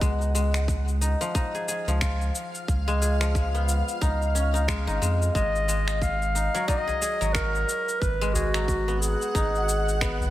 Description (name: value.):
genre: organic downtempo.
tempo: 90 BPM.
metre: 4/4.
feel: swing 59% on 16ths.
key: G# dorian.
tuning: A4 = 441 Hz.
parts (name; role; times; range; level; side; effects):
guzheng; arpeggios; 0.0-10.3 s; E#3 to G#4; -30 LUFS; left 1 dB; digital delay.
warm sub bass; bass; 0.0-10.3 s; G#1 to E#2; -26 LUFS; equal; sidechain pumping.
electronic cabasa and finger snaps; drums; 0.0-10.3 s; none; -32 LUFS; left 1 dB; none.
electronic kick drum; drums; 0.0-10.2 s; none; -28 LUFS; equal; none.
granular cloud pad; sustained chords; 1.2-10.3 s; E#5 to F#5; -36 LUFS; left 1 dB; built-in reverb, sidechain pumping.
mellow clarinet; melody; 5.3-10.3 s; F#4 to E#5; -27 LUFS; equal; digital delay.
udu; percussion; 6.9-10.3 s; none; -31 LUFS; equal; none.
room: light reverb, studio ambience.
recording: none.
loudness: -23 LUFS.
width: side -14 dB against mid.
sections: 0.0-10.3 A section.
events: none.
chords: 0.0 C#add9; 5.4 G#m7.